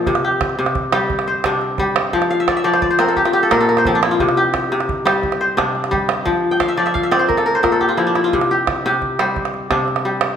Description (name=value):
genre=west african traditional, West African string and xylophone music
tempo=116 BPM (dotted quarters)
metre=12/8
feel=straight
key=C mixolydian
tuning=A4 = 440 Hz
part: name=kora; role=arpeggios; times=0.0-10.4 s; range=Bb2 to G5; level=-16 LUFS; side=left 1 dB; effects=none
part: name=calabash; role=percussion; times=0.1-10.3 s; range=none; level=-22 LUFS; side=right 5 dB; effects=none
room=wet recital hall reverb, RT60 1.4 s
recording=none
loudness=-15 LUFS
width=side -8 dB against mid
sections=0.0-8.3 A section; 8.3-10.4 B section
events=kora fill 2.3-4.2, 6.5-8.3; drum fill 7.8-8.3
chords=0.1 C5; 2.1 F5; 3.2 Bb5; 4.2 C5; 6.3 F5; 7.3 Bb5; 8.3 C5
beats=| 0.08 0.59 1.11 1.62 | 2.13 2.65 3.17 3.68 | 4.20 4.71 5.23 5.75 | 6.26 6.78 7.29 7.81 | 8.33 8.84 9.36 9.88